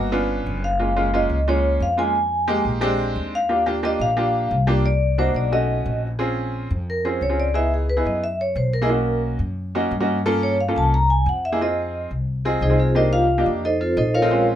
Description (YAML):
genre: jazz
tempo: 178 BPM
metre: 4/4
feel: straight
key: Bb minor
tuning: A4 = 440 Hz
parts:
  - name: bright upright piano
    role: accompaniment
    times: 0.0-14.6 s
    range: Ab3 to A4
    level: -23 LUFS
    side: right 1 dB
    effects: none
  - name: upright bass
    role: bass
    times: 0.0-14.6 s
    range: Gb1 to G2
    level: -23 LUFS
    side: left 1 dB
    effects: none
  - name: vibraphone with medium hard mallets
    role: melody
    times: 0.6-14.5 s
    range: C4 to Bb5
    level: -21 LUFS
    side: equal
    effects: none
room: light reverb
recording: minimal, uncompressed stereo recording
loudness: -18 LUFS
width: side -11 dB against mid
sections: 0.0-6.2 A section; 6.2-14.6 B section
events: vibraphone solo 6.2-14.6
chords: 0.1 G7#11; 0.8 Gbmaj7; 2.1 Fm11; 2.8 Bb13; 3.5 Ebmaj9; 4.8 Cm7b5; 5.5 B9; 6.2 Bbm7; 7.5 Dbm7; 8.2 Gb7; 8.9 Bmaj9; 10.3 Gm7b5; 10.9 C7b13; 11.6 Fm7; 13.0 Cm9; 13.6 F7